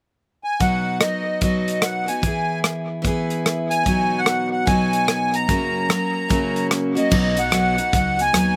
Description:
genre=honky-tonk and classic country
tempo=148 BPM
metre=4/4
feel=swing 63% on 8ths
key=B major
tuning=A4 = 440 Hz
part: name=accordion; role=melody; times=0.4-8.6 s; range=D#5 to A#5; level=-24 LUFS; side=equal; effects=light tremolo tuning
part: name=picked steel-string acoustic guitar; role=accompaniment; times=0.6-8.6 s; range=F#2 to G#4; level=-24 LUFS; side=equal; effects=none
part: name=natural country drum kit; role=drums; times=0.6-8.5 s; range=crash cymbal, hi-hat, kick drum, rim click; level=-25 LUFS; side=equal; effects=none
part: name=upright bass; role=bass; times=7.1-8.6 s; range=B1 to D#2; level=-32 LUFS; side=equal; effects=none
room=little or no reverb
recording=recorded outdoors, with no room sound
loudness=-20 LUFS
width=mono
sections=0.6-7.1 A section; 7.1-8.6 B section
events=none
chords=0.0 N.C.; 0.6 B; 2.2 E; 3.9 B; 5.5 F#; 7.1 B

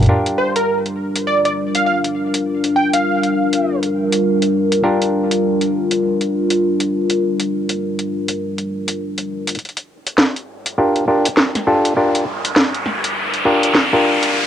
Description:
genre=glitch hop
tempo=101 BPM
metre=4/4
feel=swing 61% on 16ths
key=G minor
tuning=A4 = 440 Hz
part: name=dark analog pad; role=sustained chords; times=0.0-14.5 s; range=G3 to Bb4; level=-19 LUFS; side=left 1 dB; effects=chorus, phaser, vintage 12-bit sampler grit, cassette tape
part: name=mellow clav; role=stabs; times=0.0-14.5 s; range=D4 to Bb4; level=-18 LUFS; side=equal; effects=vintage 12-bit sampler grit, low-pass filter, cassette tape, tape echo
part: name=drum and bass drum kit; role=drums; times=0.0-14.3 s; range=hi-hat, snare drum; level=-17 LUFS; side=equal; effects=cassette tape
part: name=plucky unison lead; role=melody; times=0.4-3.8 s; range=Bb4 to G5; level=-19 LUFS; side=right 1 dB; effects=wide subtle chorus, cassette tape, tape echo
part: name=riser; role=sound effects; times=10.7-14.5 s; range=none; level=-21 LUFS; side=equal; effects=none
room=moderate small room ambience, RT60 0.5 s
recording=home recording on cassette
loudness=-15 LUFS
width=side -9 dB against mid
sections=0.1-9.6 A section; 9.6-14.5 B section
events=build-up 9.6-14.5; filter sweep on clav 9.6-14.5; filter sweep on analog synth pad 9.6-14.5; riser 10.7-14.5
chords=0.1 Gm7

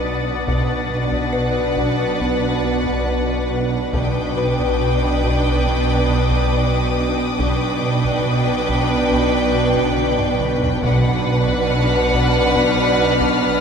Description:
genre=cinematic, suspense film score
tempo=70 BPM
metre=4/4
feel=straight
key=B phrygian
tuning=A4 = 440 Hz
part: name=rich symphonic violin section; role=melody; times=0.0-13.6 s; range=F#5 to G5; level=-26 LUFS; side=left 1 dB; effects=none
part: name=bright symphonic violin section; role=second line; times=0.0-13.6 s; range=B4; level=-24 LUFS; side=left 1 dB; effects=none
part: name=warm symphonic viola section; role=accompaniment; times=0.0-13.6 s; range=D4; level=-24 LUFS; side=right 1 dB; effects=none
part: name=smooth synth bass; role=riff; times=0.0-13.6 s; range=B2 to B3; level=-24 LUFS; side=right 2 dB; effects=none
part: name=rich symphonic cello section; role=bass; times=0.0-13.6 s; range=B2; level=-24 LUFS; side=right 1 dB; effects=none
part: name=rich symphonic double bass section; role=bass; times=0.0-13.6 s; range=B1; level=-25 LUFS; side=right 1 dB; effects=none
part: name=deep rumbling drone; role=drone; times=0.0-13.6 s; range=B1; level=-30 LUFS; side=equal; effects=none
part: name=clear symphonic violin section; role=texture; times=0.0-13.6 s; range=B5 to A6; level=-28 LUFS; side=left 4 dB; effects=none
part: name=music box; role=texture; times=0.0-6.9 s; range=B4 to C7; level=-28 LUFS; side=left 4 dB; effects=none
part: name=taiko ensemble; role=drums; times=0.5-13.6 s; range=none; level=-29 LUFS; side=left 1 dB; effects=none
part: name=timpani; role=percussion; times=10.8-12.1 s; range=B2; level=-29 LUFS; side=equal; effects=none
room=wet cathedral reverb, RT60 5.0 s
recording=minimal, uncompressed stereo recording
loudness=-16 LUFS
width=side -6 dB against mid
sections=0.0-13.6 A section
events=drum fill 10.0-10.8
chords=0.0 Bm

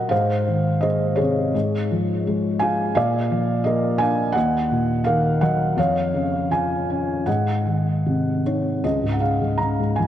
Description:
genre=classical, lyrical solo piano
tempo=74-87 BPM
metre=4/4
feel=rubato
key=unclear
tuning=A4 = 441 Hz
part: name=felt-muted upright piano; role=solo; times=0.0-10.1 s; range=Db2 to Bb5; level=-19 LUFS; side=equal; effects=tape echo
room=moderate plate reverb, RT60 3.1 s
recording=dreamy mix soaked in reverb, cassette tape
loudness=-19 LUFS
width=side -11 dB against mid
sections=0.0-8.8 A section; 8.8-10.1 B section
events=none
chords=0.1 Ab; 1.5 Db/Ab; 3.0 Bb; 4.4 Ebm; 5.8 Db/F; 7.3 Ab7; 8.8 Db

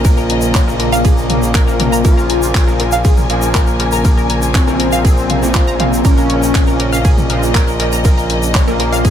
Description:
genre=melodic techno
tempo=120 BPM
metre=4/4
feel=straight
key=Bb minor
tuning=A4 = 440 Hz
part: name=rich studio string section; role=sustained chords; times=0.0-9.1 s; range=Db3 to Ab5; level=-23 LUFS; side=left 2 dB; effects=sidechain pumping
part: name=analog pluck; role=arpeggios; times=0.0-9.1 s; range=F4 to Bb5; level=-22 LUFS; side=right 1 dB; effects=chorus, phaser, sidechain pumping, analog delay
part: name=sync-sweep polysynth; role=stabs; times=0.0-9.1 s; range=Bb2 to Bb3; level=-21 LUFS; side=right 1 dB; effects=chorus, sidechain pumping, dub echo
part: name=gritty driven synth bass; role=bass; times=0.0-9.1 s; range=Bb1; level=-18 LUFS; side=equal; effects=sidechain pumping
part: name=deep house drum kit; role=drums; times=0.0-9.1 s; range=handclaps, hi-hat, ride cymbal, toms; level=-21 LUFS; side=left 1 dB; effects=overdrive, dub echo
part: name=electronic kick drum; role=drums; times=0.0-9.1 s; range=none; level=-12 LUFS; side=equal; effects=none
part: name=egg shaker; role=percussion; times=0.0-9.1 s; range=none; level=-27 LUFS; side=left 2 dB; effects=none
part: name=fat analog lead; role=melody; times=0.5-9.1 s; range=Bb3 to F4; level=-21 LUFS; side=left 2 dB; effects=ensemble chorus, sidechain pumping, tape echo
part: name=dark detuned synth bell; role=second line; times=2.0-6.9 s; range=C4 to F4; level=-24 LUFS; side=left 4 dB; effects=none
room=little or no reverb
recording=echo-heavy mix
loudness=-11 LUFS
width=side -10 dB against mid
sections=0.0-9.1 A section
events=none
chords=0.0 Bbm

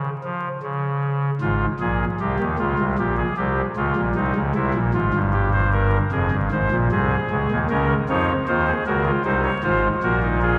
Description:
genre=classical, baroque-style 3-part fugue for pipe organ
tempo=77 BPM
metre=4/4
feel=straight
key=unclear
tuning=A4 = 444 Hz
part: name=pipe organ, soft reed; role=solo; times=0.0-10.6 s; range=F1 to Db5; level=-21 LUFS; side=equal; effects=none
room=wet cathedral reverb, RT60 4.4 s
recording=vinyl crackle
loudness=-21 LUFS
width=mono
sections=0.0-10.6 A section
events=none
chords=0.0 N.C.; 1.4 Fm/Ab; 3.0 Gm7b5/Bb; 4.6 C7; 6.1 Fm; 7.7 Bbm/Db; 9.2 Cm7b5

